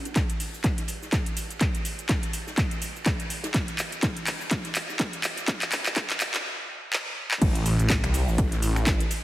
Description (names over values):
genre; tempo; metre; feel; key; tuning
bass house; 124 BPM; 4/4; swing 57% on 16ths; A minor; A4 = 440 Hz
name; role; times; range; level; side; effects
house drum kit; drums; 0.1-9.2 s; cabasa, crash cymbal, finger snaps, handclaps, hi-hat; -28 LUFS; equal; overdrive
natural country drum kit; drums; 0.1-9.2 s; hi-hat, ride cymbal, snare drum; -39 LUFS; right 1 dB; none
electronic kick drum; drums; 0.2-9.0 s; none; -26 LUFS; equal; overdrive
phased detuned saw bass; bass; 7.4-9.0 s; A1 to C2; -24 LUFS; equal; phaser, tube saturation, sidechain pumping
room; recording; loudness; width
light reverb; heavily compressed radio sound, high-pass filter; -24 LUFS; side -16 dB against mid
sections
0.0-7.4 A section; 7.4-9.2 B section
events
build-up 0.0-7.4; drum fill 0.0-6.4, 6.9-7.4; filter sweep 0.0-7.4; stop 6.4-7.4; drop 7.4-9.2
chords
none